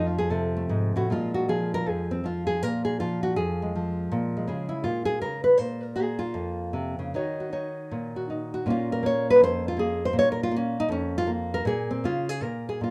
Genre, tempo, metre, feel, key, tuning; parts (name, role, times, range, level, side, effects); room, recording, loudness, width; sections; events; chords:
solo jazz; 159 BPM; 4/4; swing 65% on 8ths, rubato; Bb minor; A4 = 440 Hz
nylon-string guitar; solo; 0.0-12.9 s; F2 to Db5; -26 LUFS; equal
moderate club reverb, RT60 0.6 s; -27 LUFS; mono
0.0-1.1 A section; 1.1-12.9 A section
nylon-string guitar solo 0.0-12.9
0.0 F; 1.1 Bbm7; 7.1 Ebm7; 8.7 Bbm7